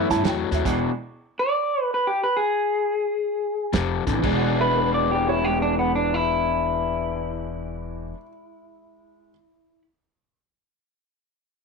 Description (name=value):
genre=electric blues shuffle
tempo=117-146 BPM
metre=4/4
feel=swing 67% on 8ths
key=E mixolydian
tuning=A4 = 440 Hz
part: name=electric guitar through a small old amp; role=melody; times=0.0-9.8 s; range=B3 to D5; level=-23 LUFS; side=equal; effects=none
part: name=clear grand piano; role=accompaniment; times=0.0-0.9, 4.1-8.3 s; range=E2 to A4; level=-31 LUFS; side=right 14 dB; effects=none
part: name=crunchy overdriven guitar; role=riff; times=0.0-0.9, 3.7-8.2 s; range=E2 to G#4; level=-26 LUFS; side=left 12 dB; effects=none
part: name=dark upright piano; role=second line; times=0.1-0.7, 4.6-9.3 s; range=G#3 to A5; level=-31 LUFS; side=right 13 dB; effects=none
part: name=upright bass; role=bass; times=0.1-0.8, 3.7-8.1 s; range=E1 to G2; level=-29 LUFS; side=right 2 dB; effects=none
part: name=warm soul drum kit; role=drums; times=0.1-0.8, 3.7-4.4 s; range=crash cymbal, hi-hat, kick drum, snare drum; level=-28 LUFS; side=right 4 dB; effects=none
room=moderate spring reverb, RT60 1.2 s, studio reverb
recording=1960s-style stereo with parts hard left and right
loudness=-21 LUFS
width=side -4 dB against mid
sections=0.0-4.2 A section; 4.2-8.3 B section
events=slowing down 0.6-4.2; stop 0.6-3.7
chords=0.0 A7; 0.6 E7; 3.7 F; 4.2 E7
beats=0.23 | 0.65 1.06 1.48 1.90 | 2.34 2.79 3.25 3.73 | 4.23 4.75 5.26 5.78 | 6.29 6.80 7.32 7.83